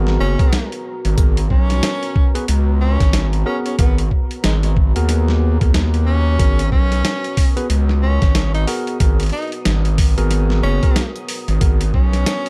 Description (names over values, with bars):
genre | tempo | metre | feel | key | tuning
glitch hop | 92 BPM | 4/4 | swing 60% on 16ths | G# minor | A4 = 441 Hz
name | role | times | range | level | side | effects
dark analog pad | sustained chords | 0.1-12.5 s | B3 to D#6 | -33 LUFS | equal | chorus, sidechain pumping
tine electric piano | stabs | 0.0-11.8 s | B3 to B4 | -28 LUFS | equal | sidechain pumping, dub echo
gritty driven synth bass | bass | 0.0-12.2 s | F#1 to D#2 | -19 LUFS | equal | overdrive
boom bap sampler-style drum kit | drums | 0.1-12.5 s | hi-hat, snare drum | -26 LUFS | equal | none
breathy tenor saxophone | melody | 0.2-12.5 s | G#3 to D#4 | -28 LUFS | equal | dub echo
electronic kick drum | drums | 0.4-12.1 s | none | -18 LUFS | equal | none
room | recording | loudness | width
digital ambience | dark, warm production | -17 LUFS | mono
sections
0.0-12.5 A section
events
none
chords
0.0 G#m9